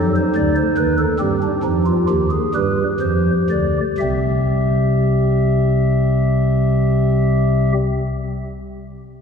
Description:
classical, baroque-style 3-part fugue for pipe organ; 40-49 BPM (dotted quarters); 6/8; straight; A4 = 438 Hz
pipe organ, stopped flute; solo; 0.0-7.7 s; C2 to E5; -15 LUFS; equal
wet church reverb, RT60 3.3 s; heard from further back in the room; -15 LUFS; side -6 dB against mid
0.0-4.0 A section; 4.0-7.0 B section
slowing down 0.0-4.0
0.0 F#dim7; 1.2 Cm; 2.5 G7; 4.0 C

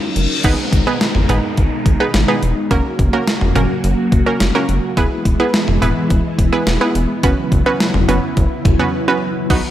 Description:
synth-pop; 106 BPM; 4/4; straight; A4 = 440 Hz
string machine, cellos; sustained chords; 0.0-9.7 s; B2 to A#5; -20 LUFS; equal; phaser, ensemble chorus
reverse cymbal and downlifter; sound effects; 0.0-5.0 s; -26 LUFS; left 2 dB
rubbery square bass; bass; 0.2-9.6 s; E1 to B1; -18 LUFS; equal
clean 12-bit digital drum machine; drums; 0.2-9.6 s; crash cymbal, hi-hat, kick drum, snare drum, toms; -17 LUFS; equal; overdrive, gated reverb
wide unison pluck; accompaniment; 0.4-9.7 s; A#3 to B4; -19 LUFS; right 2 dB
light reverb; -13 LUFS; side -12 dB against mid
0.4-9.5 A section
reverse cymbal 0.0-0.4; break 8.9-9.5
0.4 G#madd9; 2.7 F#; 5.0 E; 7.2 F#7sus4

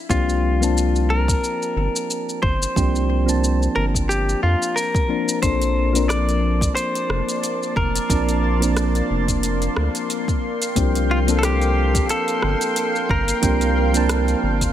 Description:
sunset chillout; 90 BPM; 4/4; swing 56% on 16ths; A4 = 441 Hz
direct-recorded clean electric guitar; melody; 0.1-14.7 s; F4 to D5; -24 LUFS; left 1 dB; vintage 12-bit sampler grit, ping-pong delay
soft electric-piano-like synth keys; accompaniment; 0.1-14.7 s; F3 to A5; -24 LUFS; moving between left 9 dB and right 8 dB; chorus, auto-pan, low-pass filter, digital delay
round analog bass; bass; 0.1-14.7 s; F1 to F2; -21 LUFS; equal
deep house drum kit; drums; 0.1-14.7 s; hi-hat, rim click, shaker; -27 LUFS; equal
electronic kick drum; drums; 0.1-14.7 s; -22 LUFS; equal
lush unison pad; sustained chords; 5.4-14.7 s; Bb3 to C6; -26 LUFS; equal; chorus
digital ambience; -18 LUFS; side -11 dB against mid
0.0-14.7 A section
0.0 C7sus4; 5.4 Bbmaj9; 10.4 C7sus4

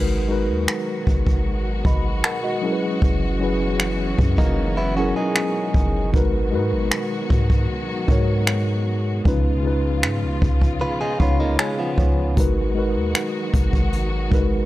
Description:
contemporary R&B; 77 BPM; 4/4; straight; G# minor; A4 = 440 Hz
mellow tine electric piano; accompaniment; 0.0-14.7 s; C#3 to B5; -24 LUFS; equal; medium stereo tremolo
warm symphonic string section; sustained chords; 0.0-14.7 s; B2 to F#4; -29 LUFS; left 1 dB
warm 808-style bass; bass; 0.0-14.7 s; F#1 to G#2; -23 LUFS; equal
jazz brush drum kit; drums; 0.7-14.5 s; finger snaps, hi-hat, kick drum; -20 LUFS; equal
direct-recorded clean electric guitar; arpeggios; 4.4-6.1, 10.8-12.3 s; E#3 to B4; -26 LUFS; right 1 dB; analog delay
small room ambience; dry, gritty hardware recording, transformer saturation; -18 LUFS; side -16 dB against mid
0.0-14.7 A section
tine electric piano fill 10.8-12.4
0.0 G#m7; 2.6 F#9sus4; 6.1 G#m7; 9.3 C#7; 12.4 G#m7

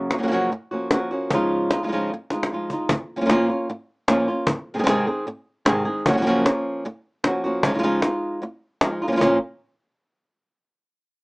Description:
flamenco; 152 BPM; 4/4; straight; A4 = 440 Hz
flamenco guitar; melody; 0.0-9.4 s; Gb2 to Ab4; -21 LUFS; equal
cajon; percussion; 0.1-9.3 s; -22 LUFS; left 1 dB
light reverb; rough home demo mix, small speaker sound; -20 LUFS; side -30 dB against mid
0.0-2.9 A section; 2.9-9.2 A section; 9.2-10.8 B section
drum fill 2.3-2.9
0.0 Gbmaj7; 1.3 Dbadd9; 2.9 Bbm; 4.5 Ab; 6.1 Gbmaj7; 7.6 Dbadd9; 9.2 N.C.

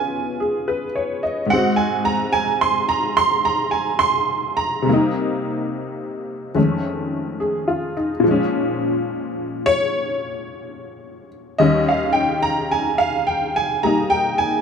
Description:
solo jazz; 72 BPM; 4/4; swing 68% on 8ths; A4 = 440 Hz
honky-tonk upright piano; solo; 0.0-14.6 s; Eb2 to C6; -18 LUFS; equal
light reverb; -18 LUFS; side -6 dB against mid
0.0-14.6 A section
0.0 Db7; 1.5 Ab7; 4.9 Cm7; 6.6 F7alt; 8.2 Bbm7; 11.6 Eb7

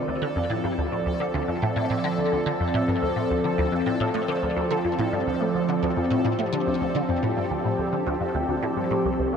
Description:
ambient, sequencer-driven space music; 107 BPM; 4/4; straight; A4 = 440 Hz
phased analog pad; sustained chords; 0.0-9.4 s; Eb3 to D5; -25 LUFS; equal; phaser, chorus
resonant blip pluck; riff; 0.0-9.4 s; C2 to D3; -26 LUFS; equal; phaser, ensemble chorus, ping-pong delay
bubbling stepped-filter texture; texture; 0.0-9.4 s; A4; -39 LUFS; right 2 dB; chorus, built-in reverb
wet huge ambient reverb, RT60 8.3 s; in a vast, echoing space; -22 LUFS; side -7 dB against mid
0.0-9.4 A section
0.1 Dm7

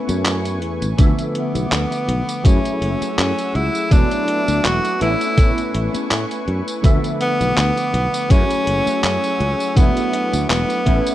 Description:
vaporwave; 82 BPM; 4/4; swing 55% on 16ths; A major; A4 = 440 Hz
bell-like tine electric piano; accompaniment; 0.0-11.1 s; D3 to E5; -24 LUFS; equal; ensemble chorus
lush unison pad; sustained chords; 0.0-11.1 s; G#4 to E6; -32 LUFS; left 2 dB; chorus
mellow electric guitar; riff; 0.1-11.1 s; A3 to A4; -32 LUFS; right 4 dB
sustaining fretless electric bass; bass; 0.1-11.0 s; E1 to A2; -21 LUFS; equal
detuned 8-bit digital drum machine; drums; 0.1-11.1 s; handclaps, hi-hat, tambourine; -24 LUFS; equal; studio reverb
electronic kick drum; drums; 1.0-11.0 s; -14 LUFS; equal; studio reverb
clear tenor saxophone; melody; 1.4-11.1 s; B3 to F#4; -21 LUFS; equal; tape echo
little or no reverb; rough home demo mix, cassette tape; -16 LUFS; side -13 dB against mid
0.0-11.1 A section
0.0 Amaj9; 1.0 Dm6; 2.5 F#m9; 3.9 E7sus4; 5.0 Amaj9; 6.8 Dm6; 8.3 F#m9; 9.8 E7sus4

